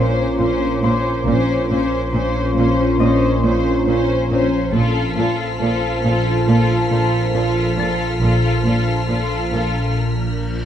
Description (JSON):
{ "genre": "cinematic, suspense film score", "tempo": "69 BPM", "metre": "4/4", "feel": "straight", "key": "Bb harmonic minor", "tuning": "A4 = 436 Hz", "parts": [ { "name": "rich symphonic violin section", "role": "second line", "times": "0.0-10.0 s", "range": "Db4 to C5", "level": "-22 LUFS", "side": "left 3 dB", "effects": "none" }, { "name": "deep dark ambient pad", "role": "sustained chords", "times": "0.0-9.9 s", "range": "Db4 to C6", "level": "-22 LUFS", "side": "equal", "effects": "chorus, built-in reverb" }, { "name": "dark studio cello section", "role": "riff", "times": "0.0-9.8 s", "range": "Bb2 to Bb3", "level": "-23 LUFS", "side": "right 1 dB", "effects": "none" }, { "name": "rich studio cello section", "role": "bass", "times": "0.0-9.6 s", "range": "Bb2", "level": "-25 LUFS", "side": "right 2 dB", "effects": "none" }, { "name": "organ-like drone", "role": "drone", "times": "0.0-10.7 s", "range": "Bb1", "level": "-22 LUFS", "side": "equal", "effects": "ensemble chorus, built-in reverb" }, { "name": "concert harp", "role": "texture", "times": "0.0-10.7 s", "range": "Bb4 to A6", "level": "-30 LUFS", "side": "left 5 dB", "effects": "none" }, { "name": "warm symphonic violin section", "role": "texture", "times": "0.0-10.7 s", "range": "C6 to Cb7", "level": "-32 LUFS", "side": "left 2 dB", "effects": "none" }, { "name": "warm symphonic double bass section", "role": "bass", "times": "1.3-8.6 s", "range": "Bb1", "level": "-23 LUFS", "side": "right 3 dB", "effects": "none" }, { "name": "reverse cymbal", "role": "sound effects", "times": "10.1-10.7 s", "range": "none", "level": "-41 LUFS", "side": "left 1 dB", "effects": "none" } ], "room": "moderate scoring stage reverb, RT60 1.6 s", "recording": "close, detailed microphones", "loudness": "-15 LUFS", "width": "side -10 dB against mid", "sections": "0.0-10.7 A section", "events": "reverse cymbal 10.1-10.7", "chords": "0.0 Bbmadd9; 4.7 F/Bb" }